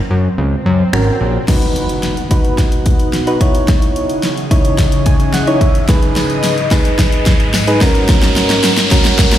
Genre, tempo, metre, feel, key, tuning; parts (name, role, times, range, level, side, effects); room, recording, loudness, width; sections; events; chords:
dance-pop; 109 BPM; 4/4; straight; C# dorian; A4 = 440 Hz
swell, riser and impact; sound effects; 0.0-9.4 s; -22 LUFS; equal
fat analog bass; bass; 0.1-1.4 s; G#1 to F#2; -13 LUFS; left 1 dB; sidechain pumping
soft electric-piano-like synth keys; accompaniment; 0.9-9.4 s; C#4 to G#5; -17 LUFS; right 1 dB; chorus, sidechain pumping
pop drum kit; drums; 0.9-9.4 s; crash cymbal, finger snaps, hi-hat, kick drum, snare drum; -13 LUFS; equal
glassy FM pad; sustained chords; 2.1-9.4 s; F#2 to F#5; -20 LUFS; left 1 dB; ensemble chorus, built-in reverb, sidechain pumping
tambourine; percussion; 6.2-9.3 s; -29 LUFS; left 8 dB
light reverb; played on a big sound system in a bare room, stone room reverb; -11 LUFS; side -12 dB against mid
0.0-1.5 A section; 1.5-9.4 B section
break 0.0-1.5; swell 0.0-1.5; build-up 1.5-9.4; drum fill 1.5-9.4; impact 1.5-3.7; riser 1.5-9.4; synth keys fill 4.8-5.9
0.0 F#; 1.5 B; 3.4 C#madd9; 5.9 G#m; 7.8 F#